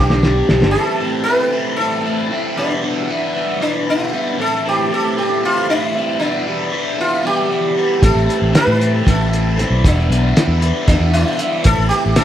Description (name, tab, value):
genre	psychedelic rock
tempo	231 BPM (eighths)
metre	7/8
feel	straight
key	A minor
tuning	A4 = 440 Hz
part	sitar	melody	0.0-12.2 s	D4 to B4	-19 LUFS	equal	slapback echo
part	overdriven electric guitar	riff	0.0-12.2 s	E2 to G4	-19 LUFS	equal	phaser
part	fingered electric bass	bass	0.0-0.7, 8.0-12.2 s	E1 to A2	-16 LUFS	equal	none
part	cloth-damped thuddy drum kit	drums	0.1-0.7, 8.0-12.2 s	hi-hat, kick drum, snare drum	-15 LUFS	equal	none
room	little or no reverb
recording	none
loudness	-14 LUFS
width	side -11 dB against mid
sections	0.8-12.2 A section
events	drum fill 0.0-0.8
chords	0.0 G; 0.8 Am; 2.6 Em7; 4.4 Am; 6.2 Em7; 8.0 Am; 9.8 Em7; 11.7 Am